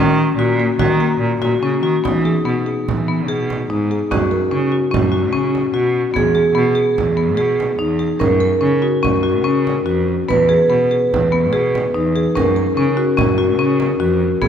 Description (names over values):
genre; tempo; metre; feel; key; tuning
contemporary instrumental, chamber music in an uneven meter; 146 BPM; 5/4; straight; unclear; A4 = 441 Hz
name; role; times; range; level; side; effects
vibraphone with medium mallets; second line; 0.0-14.5 s; D#4 to B4; -20 LUFS; right 3 dB; none
marimba with medium mallets; arpeggios; 0.0-14.5 s; Bb3 to Bb4; -18 LUFS; left 6 dB; none
rich cello; bass; 0.0-14.5 s; E2 to E3; -20 LUFS; right 3 dB; none
frame drum; percussion; 0.2-14.5 s; none; -25 LUFS; right 5 dB; none
room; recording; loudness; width
wet scoring stage reverb, RT60 2.1 s; none; -14 LUFS; side -8 dB against mid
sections
0.0-2.0 A section; 2.0-14.5 B section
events
none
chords
0.0 Ebm7; 2.0 Emaj7; 4.1 Gb5; 6.2 E; 8.2 Gb; 10.3 E; 12.4 Gb